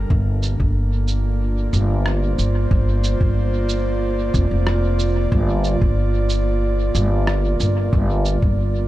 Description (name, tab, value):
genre	ambient dub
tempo	92 BPM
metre	4/4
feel	straight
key	G minor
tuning	A4 = 440 Hz
part	airy breathy pad	sustained chords	0.0-8.9 s	G3 to D5	-24 LUFS	right 2 dB	chorus
part	upright bass	bass	0.0-8.9 s	F1 to G1	-18 LUFS	equal	none
part	electronic kick drum	drums	0.1-8.5 s	none	-20 LUFS	equal	overdrive
part	electronic shaker and rim click	drums	0.4-8.4 s	none	-28 LUFS	right 2 dB	overdrive, dub echo
room	little or no reverb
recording	dark, warm production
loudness	-17 LUFS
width	side -15 dB against mid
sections	0.0-8.9 A section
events	none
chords	0.0 Gm9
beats	| 0.10 0.75 1.41 2.06 | 2.71 3.36 4.01 4.67 | 5.32 5.97 6.62 7.28 | 7.93 8.58